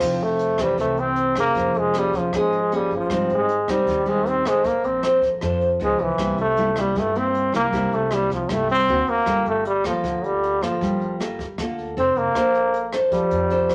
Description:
bossa nova; 156 BPM; 4/4; straight; F major; A4 = 439 Hz
bright trombone; melody; 0.0-13.7 s; E3 to C4; -23 LUFS; equal
nylon-string guitar; accompaniment; 0.0-13.7 s; F2 to C5; -25 LUFS; equal
upright bass; bass; 0.0-13.7 s; F1 to G2; -36 LUFS; equal
jazz brush drum kit; drums; 0.0-13.7 s; crash cymbal, hi-hat, kick drum, rim click; -37 LUFS; equal
wet studio reverb, RT60 0.6 s; -21 LUFS; mono
0.0-12.4 A section; 12.4-13.7 B section
0.0 Fmaj7; 1.6 Db6/F; 3.1 Abmaj7; 4.6 Bbmaj9; 5.8 Db9; 6.2 C7; 8.9 D7b13; 9.3 Gm9; 12.0 F6; 12.4 Bbmaj9

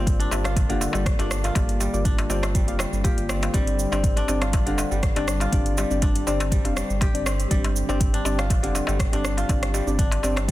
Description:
afro house; 121 BPM; 4/4; swing 53% on 16ths; A4 = 440 Hz
warm analog pad; sustained chords; 0.0-10.5 s; D3 to G4; -33 LUFS; left 1 dB; chorus, sidechain pumping
kora; arpeggios; 0.0-10.5 s; D3 to G4; -30 LUFS; left 1 dB; vintage 12-bit sampler grit, sidechain pumping, tape echo
deep mellow chord stab; stabs; 0.0-10.4 s; Bb3 to F5; -29 LUFS; left 1 dB; chorus, sidechain pumping, tape echo
warm sub bass; bass; 0.0-10.5 s; F1 to G1; -27 LUFS; equal; tube saturation, sidechain pumping
afro-pop drum kit; drums; 0.1-10.5 s; hi-hat, rim click, shaker; -31 LUFS; right 1 dB; studio ambience, soft clipping on snare
electronic kick drum; drums; 0.1-10.5 s; -23 LUFS; equal; studio ambience
darbuka; percussion; 0.3-10.5 s; -34 LUFS; left 2 dB
digital ambience; dense, heavily limited modern master; -20 LUFS; side -16 dB against mid
0.0-10.5 A section
0.0 Gm7; 3.5 Csus2

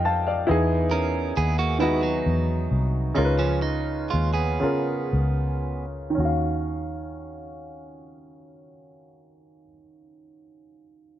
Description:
slow six-eight R&B; 37-46 BPM (dotted quarters); 6/8; straight; Eb minor; A4 = 440 Hz
clear concert grand piano; accompaniment; 0.0-11.2 s; Db3 to A5; -26 LUFS; equal; low-pass filter
vintage muted fingered electric bass; bass; 0.0-9.7 s; C2 to F2; -25 LUFS; equal
clean electric guitar; second line; 0.9-5.8 s; F3 to Bb4; -28 LUFS; right 6 dB
light reverb; dark, warm production; -22 LUFS; side -12 dB against mid
0.0-6.2 A section; 6.2-9.4 B section
filter sweep on grand piano 0.0-6.2; slowing down 0.5-6.2
0.5 Emaj7; 3.2 Db7; 6.2 Ebm9

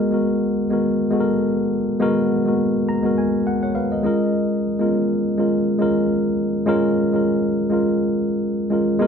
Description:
soul; 103 BPM; 4/4; swing 58% on 16ths; A4 = 438 Hz
tine electric piano; solo; 0.0-9.1 s; G#3 to A#5; -18 LUFS; equal
moderate stone room reverb, RT60 1.1 s; band playing live in one room; -18 LUFS; side -7 dB against mid
0.0-9.1 A section
tine electric piano fill 2.6-4.3
0.0 G#m9; 4.1 A#m7

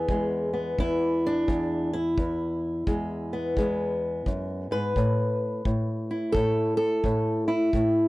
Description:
acoustic country blues, solo or duo; 86 BPM; 4/4; swing 63% on 8ths; E major; A4 = 440 Hz
fingerpicked old ladder-braced acoustic guitar; melody; 0.0-8.1 s; E2 to B4; -24 LUFS; equal
kick drum; drums; 0.1-7.9 s; -29 LUFS; equal
little or no reverb; dry, close 1970s-style studio recording; -24 LUFS; side -19 dB against mid
0.0-8.1 A section
0.0 E; 5.0 A5

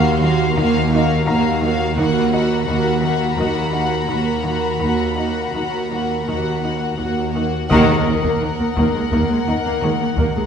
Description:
cinematic, suspense film score; 85 BPM; 4/4; straight; Eb minor; A4 = 440 Hz
warm symphonic violin section; melody; 0.0-10.5 s; F5 to Gb5; -26 LUFS; left 5 dB
dark studio violin section; second line; 0.0-10.5 s; Gb4 to Bb4; -25 LUFS; left 2 dB
dark symphonic viola section; accompaniment; 0.0-10.4 s; Ab3 to Bb3; -24 LUFS; right 2 dB
clear studio cello section; riff; 0.0-10.4 s; Eb3 to Eb4; -24 LUFS; right 1 dB
warm symphonic cello section; bass; 0.0-10.4 s; Eb2; -23 LUFS; right 2 dB
warm symphonic double bass section; bass; 0.0-10.2 s; Eb2; -24 LUFS; right 1 dB
clear baby grand piano; texture; 0.0-10.5 s; Gb4 to Eb6; -29 LUFS; left 2 dB
warm symphonic violin section; texture; 0.0-7.3 s; Bb5 to Cb6; -29 LUFS; left 6 dB
taiko ensemble; drums; 7.7-10.5 s; -25 LUFS; left 1 dB
timpani; percussion; 7.7-8.7 s; Eb3; -26 LUFS; left 1 dB
wet scoring stage reverb, RT60 1.9 s; heard from further back in the room, nothing above 11.0 kHz; -16 LUFS; side -7 dB against mid
0.0-7.7 A section; 7.7-10.5 B section
band accent 7.7-8.4
0.0 Ebmadd9; 7.7 Ebm

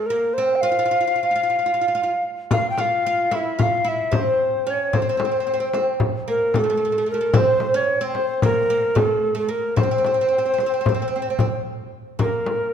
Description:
Turkish makam ensemble; 224 BPM (eighths); 9/8; straight; C makam hicaz; A4 = 440 Hz
mellow hollow alto recorder; melody; 0.0-12.7 s; A4-44c to G5; -20 LUFS; left 1 dB
oud; second line; 0.0-12.7 s; A3-40c to F4; -25 LUFS; right 3 dB
frame drum; percussion; 2.5-12.6 s; -23 LUFS; left 2 dB
moderate concert hall reverb, RT60 1.9 s; minimal, uncompressed stereo recording; -18 LUFS; side -8 dB against mid
0.0-12.2 A section

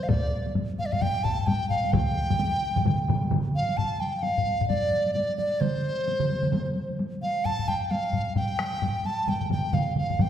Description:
japanese traditional, taiko drum ensemble; 131 BPM; 4/4; swing 60% on 16ths; G suspended pentatonic; A4 = 440 Hz
hollow large dizi; melody; 0.0-10.3 s; C5 to A5; -28 LUFS; equal
taiko ensemble; percussion; 0.0-10.3 s; -32 LUFS; equal
solo taiko drums; percussion; 0.1-10.3 s; -29 LUFS; left 3 dB
taiko ensemble; percussion; 0.1-2.1 s; -30 LUFS; equal
taiko ensemble; percussion; 1.9-10.3 s; -29 LUFS; right 3 dB
wet recital hall reverb, RT60 1.7 s; recorded in a church or concert hall; -24 LUFS; side -10 dB against mid
0.0-3.8 A section; 3.8-10.3 B section

